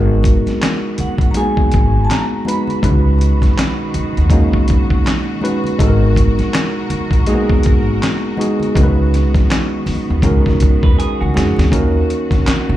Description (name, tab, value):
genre	R&B, neo-soul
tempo	81 BPM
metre	4/4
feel	swing 60% on 16ths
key	G# minor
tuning	A4 = 439 Hz
part	tine electric piano	accompaniment	0.0-12.8 s	G#3 to B4	-18 LUFS	equal	slapback echo
part	rich studio string section	sustained chords	0.0-12.8 s	B2 to A#4	-27 LUFS	right 2 dB	none
part	upright bass	bass	0.0-12.8 s	G#1 to E#2	-16 LUFS	equal	none
part	dusty soul sampler-style drum kit	drums	0.2-12.7 s	handclaps, hi-hat, kick drum, snare drum	-16 LUFS	equal	none
part	congas	percussion	0.2-12.7 s	none	-28 LUFS	right 1 dB	none
part	vibraphone with medium mallets	melody	1.0-4.7 s	F#5 to B5	-24 LUFS	right 1 dB	slapback echo
part	electric guitar through a small old amp	second line	10.8-11.7 s	F#4 to B4	-26 LUFS	right 7 dB	slapback echo
room	studio ambience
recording	live gig heard through the venue's PA, club reverb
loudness	-12 LUFS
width	side -14 dB against mid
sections	0.0-11.7 A section; 11.7-12.8 B section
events	drum fill 11.0-11.7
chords	0.0 G#m9; 2.8 C#9sus4; 5.8 G#m9; 8.8 C#9sus4; 11.7 D#m7